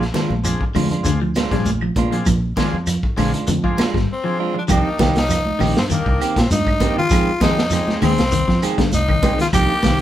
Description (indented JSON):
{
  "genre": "afrobeat",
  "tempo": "99 BPM",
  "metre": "4/4",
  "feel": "straight",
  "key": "C minor",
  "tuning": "A4 = 440 Hz",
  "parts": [
    { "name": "combo organ", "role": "accompaniment", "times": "0.0-9.8 s", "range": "Ab3 to Ab4", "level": "-29 LUFS", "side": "left 2 dB", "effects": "none" },
    { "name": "semi-hollow electric guitar", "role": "arpeggios", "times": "0.0-10.0 s", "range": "D3 to G3", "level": "-23 LUFS", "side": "left 2 dB", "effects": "none" },
    { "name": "semi-hollow electric guitar", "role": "stabs", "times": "0.0-10.0 s", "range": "Eb3 to Ab4", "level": "-24 LUFS", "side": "right 4 dB", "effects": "none" },
    { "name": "fingered electric bass", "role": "bass", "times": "0.0-10.0 s", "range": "Ab1 to D3", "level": "-22 LUFS", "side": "equal", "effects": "none" },
    { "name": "crunchy breakbeat drum kit", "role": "drums", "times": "0.0-10.0 s", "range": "hi-hat, kick drum, snare drum", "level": "-22 LUFS", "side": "equal", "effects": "none" },
    { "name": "congas", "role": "percussion", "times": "0.1-10.0 s", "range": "none", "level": "-25 LUFS", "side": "right 2 dB", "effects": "none" },
    { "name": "shekere", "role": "percussion", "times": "0.1-10.0 s", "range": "none", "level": "-28 LUFS", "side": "right 1 dB", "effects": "none" },
    { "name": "claves", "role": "percussion", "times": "0.5-9.7 s", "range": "none", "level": "-35 LUFS", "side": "right 6 dB", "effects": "none" },
    { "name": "growling tenor saxophone", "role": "melody", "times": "4.1-10.0 s", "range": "Bb3 to G4", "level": "-21 LUFS", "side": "left 2 dB", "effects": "none" }
  ],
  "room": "moderate small room reverb, RT60 0.5 s",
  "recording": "band playing live in one room",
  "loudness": "-16 LUFS",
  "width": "side -12 dB against mid",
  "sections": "0.0-4.7 A section; 4.7-10.0 B section",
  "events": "break 4.1-4.7",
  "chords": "0.0 Bb7; 4.7 Cm7; 7.1 Fm7"
}